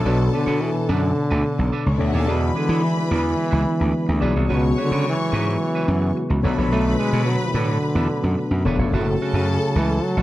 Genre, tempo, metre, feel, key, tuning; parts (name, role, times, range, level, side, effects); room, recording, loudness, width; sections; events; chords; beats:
disco; 108 BPM; 4/4; straight; A4 = 440 Hz
clear studio string section; second line; 0.0-10.2 s; C#4 to C#6; -30 LUFS; left 2 dB
clean electric guitar; accompaniment; 0.0-10.2 s; C#4 to C#5; -33 LUFS; right 6 dB
tine electric piano; accompaniment; 0.0-10.2 s; B2 to D5; -26 LUFS; left 4 dB
gritty slap bass; bass; 0.0-10.2 s; E1 to E3; -21 LUFS; equal; overdrive
warm trombone; melody; 0.1-10.2 s; A2 to A3; -24 LUFS; equal
mellow tonewheel organ; sustained chords; 2.3-10.2 s; C#3 to A4; -28 LUFS; right 1 dB; chorus vibrato, fast rotary speaker
light reverb, small room reverb; dark, warm production; -18 LUFS; side -15 dB against mid
0.0-10.2 A section
0.0 Bm7; 2.3 E7; 4.5 C#7sus4; 6.4 Bm7; 8.9 F#m
| 0.04 0.60 1.16 1.71 | 2.27 2.82 3.38 3.93 | 4.49 5.04 5.60 6.15 | 6.71 7.26 7.82 8.37 | 8.92 9.48 10.03